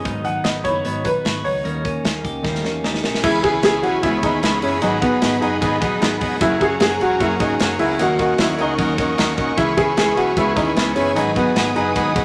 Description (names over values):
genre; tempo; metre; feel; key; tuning
jangly indie pop; 151 BPM; 4/4; straight; G# minor; A4 = 439 Hz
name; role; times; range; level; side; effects
warm upright piano; melody; 0.0-12.2 s; B3 to F#5; -23 LUFS; equal; none
fingerpicked steel-string acoustic guitar; accompaniment; 0.0-12.2 s; G#2 to B4; -28 LUFS; equal; none
twelve-string electric guitar; arpeggios; 0.0-12.2 s; D#3 to G#4; -29 LUFS; equal; spring reverb
vintage muted picked electric bass; bass; 0.0-12.2 s; E1 to E2; -34 LUFS; equal; none
modern studio drum kit; drums; 0.1-12.2 s; crash cymbal, hi-hat, kick drum, ride cymbal, snare drum; -26 LUFS; equal; none
combo organ; accompaniment; 3.2-12.2 s; C#4 to C#5; -26 LUFS; equal; none
warm studio string section; sustained chords; 3.2-12.2 s; G#4 to D#6; -30 LUFS; equal; none
tambourine; percussion; 3.2-12.2 s; none; -46 LUFS; equal; none
room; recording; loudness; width
moderate large studio reverb, RT60 1.2 s; none; -19 LUFS; mono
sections
0.0-3.2 A section; 3.2-12.2 B section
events
drum fill 2.4-3.2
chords
0.1 G#m7; 1.6 D#7; 3.2 C#m7; 4.8 G#m7; 6.4 F#add9; 8.0 D#m7; 9.6 C#m7; 11.2 G#m7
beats
| 0.06 0.46 0.85 1.25 | 1.65 2.05 2.44 2.84 | 3.24 3.63 4.03 4.43 | 4.82 5.22 5.62 6.01 | 6.41 6.80 7.20 7.60 | 7.99 8.39 8.79 9.18 | 9.58 9.98 10.37 10.77 | 11.17 11.56 11.96